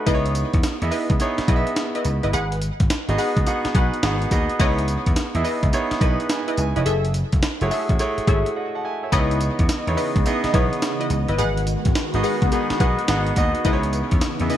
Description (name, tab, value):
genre	R&B, new jack swing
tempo	106 BPM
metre	4/4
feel	swing 65% on 16ths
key	C# minor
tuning	A4 = 435 Hz
part	clear baby grand piano	accompaniment	0.0-14.6 s	A3 to B5	-24 LUFS	right 2 dB	none
part	funky polysynth comp	stabs	0.1-14.6 s	E4 to F#5	-27 LUFS	left 2 dB	chorus, digital delay
part	vintage slap bass	bass	0.1-14.5 s	E#1 to E2	-23 LUFS	equal	none
part	breakbeat sampler-style drum kit	drums	0.1-14.6 s	hi-hat, kick drum, snare drum, tambourine	-22 LUFS	equal	vintage 12-bit sampler grit, gated reverb
part	phased analog pad	sustained chords	9.1-14.6 s	C#3 to D#5	-28 LUFS	equal	phaser, chorus
room	light reverb, digital ambience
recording	bright 1980s-style digital production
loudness	-18 LUFS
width	side -11 dB against mid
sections	0.1-14.6 A section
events	break 8.6-9.1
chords	0.1 C#m9; 2.3 G#m7; 4.6 C#m9; 6.9 F#m9; 9.1 C#m9; 11.4 G#m7; 13.7 C#m9